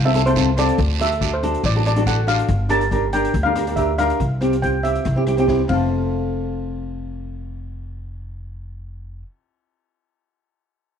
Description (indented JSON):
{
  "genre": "calypso",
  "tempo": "140 BPM",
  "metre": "4/4",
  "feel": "straight",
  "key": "F major",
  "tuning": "A4 = 442 Hz",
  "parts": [
    { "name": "steel pan", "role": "melody", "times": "0.0-9.2 s", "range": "C5 to A5", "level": "-23 LUFS", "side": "equal", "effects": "none" },
    { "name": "nylon-string guitar", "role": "accompaniment", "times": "0.0-9.3 s", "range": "C4 to Bb4", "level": "-21 LUFS", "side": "equal", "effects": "none" },
    { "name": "upright bass", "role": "bass", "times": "0.0-9.2 s", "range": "F1 to D2", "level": "-23 LUFS", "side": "equal", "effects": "none" },
    { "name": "street-band drum kit", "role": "drums", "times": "0.1-5.8 s", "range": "hi-hat, kick drum, ride cymbal, rim click, snare drum", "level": "-28 LUFS", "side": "left 2 dB", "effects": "none" },
    { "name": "guiro", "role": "percussion", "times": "0.4-2.4 s", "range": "none", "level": "-29 LUFS", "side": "right 15 dB", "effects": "none" }
  ],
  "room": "light reverb, small room ambience",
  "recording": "1960s-style stereo",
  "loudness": "-17 LUFS",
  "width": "side -7 dB against mid",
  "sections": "0.0-5.9 A section; 5.9-9.4 B section",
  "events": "drum fill 5.5-5.9",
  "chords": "0.0 F; 0.8 D; 2.5 Gm; 4.2 Csus4; 5.1 C; 5.7 F"
}